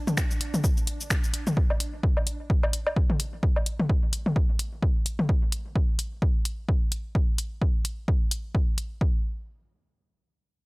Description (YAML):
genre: minimal techno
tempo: 129 BPM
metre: 4/4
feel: swing 57% on 16ths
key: unclear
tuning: A4 = 440 Hz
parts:
  - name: swarming drone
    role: texture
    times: 0.0-1.6 s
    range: D4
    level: -44 LUFS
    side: right 5 dB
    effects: built-in reverb, sidechain pumping
  - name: punchy analog drum machine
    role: drums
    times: 0.1-8.9 s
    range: finger snaps, hi-hat, shaker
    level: -30 LUFS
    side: left 1 dB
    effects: none
  - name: electronic toms and woodblock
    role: percussion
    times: 0.1-5.3 s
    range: none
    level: -28 LUFS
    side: left 1 dB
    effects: overdrive
  - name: electronic kick drum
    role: drums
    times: 0.2-9.1 s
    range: none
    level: -24 LUFS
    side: equal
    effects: none
room: little or no reverb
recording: dry, gritty hardware recording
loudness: -24 LUFS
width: side -27 dB against mid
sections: 0.0-9.0 A section; 9.0-10.7 B section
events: none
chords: none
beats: 0.17 0.64 1.10 | 1.57 2.03 2.50 2.96 | 3.43 3.89 4.36 4.82 | 5.29 5.75 6.22 6.68 | 7.15 7.62 8.08 8.54 | 9.01